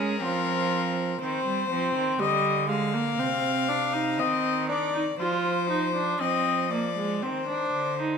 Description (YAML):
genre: classical, baroque-style fugue for string quartet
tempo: 60 BPM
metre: 4/4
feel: straight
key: F minor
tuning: A4 = 441 Hz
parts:
  - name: warm violin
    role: melody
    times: 0.0-8.2 s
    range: Bb4 to F5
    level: -27 LUFS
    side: left 8 dB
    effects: none
  - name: dark violin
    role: second line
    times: 0.0-1.2 s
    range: F4 to Ab4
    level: -33 LUFS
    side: left 4 dB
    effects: none
  - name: warm viola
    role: accompaniment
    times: 0.0-8.2 s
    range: G3 to F4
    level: -28 LUFS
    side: right 4 dB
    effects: none
  - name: rich cello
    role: bass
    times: 0.0-8.2 s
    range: C3 to Ab3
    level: -32 LUFS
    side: right 6 dB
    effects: none
room: moderate recital hall reverb, RT60 1.5 s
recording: minimal, uncompressed stereo recording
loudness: -24 LUFS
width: side -6 dB against mid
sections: 0.0-8.2 A section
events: none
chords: 0.0 Fm; 1.2 Cm/Eb; 3.2 Cm; 5.2 F5; 7.2 Cm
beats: 0.21 | 1.20 2.19 3.19 4.19 | 5.19 6.20 7.22